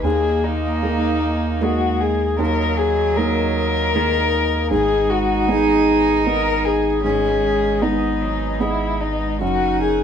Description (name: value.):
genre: neoclassical piano and strings.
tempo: 77 BPM.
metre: 3/4.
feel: rubato.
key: G# minor.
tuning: A4 = 440 Hz.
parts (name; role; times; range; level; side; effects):
dark violin; melody; 0.0-10.0 s; D#4 to A#4; -20 LUFS; left 5 dB; none.
rich cello; second line; 0.0-10.0 s; D#3 to D#4; -23 LUFS; right 4 dB; none.
felt-muted upright piano; accompaniment; 0.0-10.0 s; D#2 to D#5; -24 LUFS; right 3 dB; none.
hand-pumped harmonium; sustained chords; 0.0-10.0 s; A#3 to F#5; -31 LUFS; right 4 dB; none.
warm sub bass; bass; 0.0-10.0 s; F#1 to D#2; -25 LUFS; equal; none.
room: light reverb.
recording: band playing live in one room.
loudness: -16 LUFS.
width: side -8 dB against mid.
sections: 0.0-10.0 A section.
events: none.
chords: 0.0 D#sus4; 4.7 G#m; 9.4 F#.